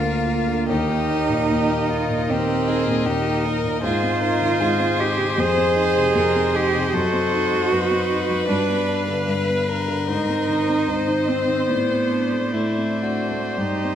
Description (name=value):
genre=classical, slow romantic movement for piano quintet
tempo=56-78 BPM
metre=4/4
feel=rubato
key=Eb major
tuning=A4 = 438 Hz
part: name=rich violin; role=melody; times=0.0-13.9 s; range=E4 to C5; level=-26 LUFS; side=left 6 dB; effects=none
part: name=clear cello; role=second line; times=0.0-13.9 s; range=A3 to Ab4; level=-22 LUFS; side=right 4 dB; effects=none
part: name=clear violin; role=second line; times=0.0-13.9 s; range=D5 to F5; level=-32 LUFS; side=left 3 dB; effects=none
part: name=dark grand piano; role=accompaniment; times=0.0-13.9 s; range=D2 to F4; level=-24 LUFS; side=left 1 dB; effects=none
part: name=rich viola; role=accompaniment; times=0.0-13.9 s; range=Bb4 to C5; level=-28 LUFS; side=right 1 dB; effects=none
room=wet recital hall reverb, RT60 1.5 s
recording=none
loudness=-18 LUFS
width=side -9 dB against mid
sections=0.0-13.9 A section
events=none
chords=0.0 Bb/D; 0.7 Eb; 3.8 Ab; 5.4 Fm7; 6.9 F#dim7; 8.5 G7; 10.1 Ab; 11.7 D5/A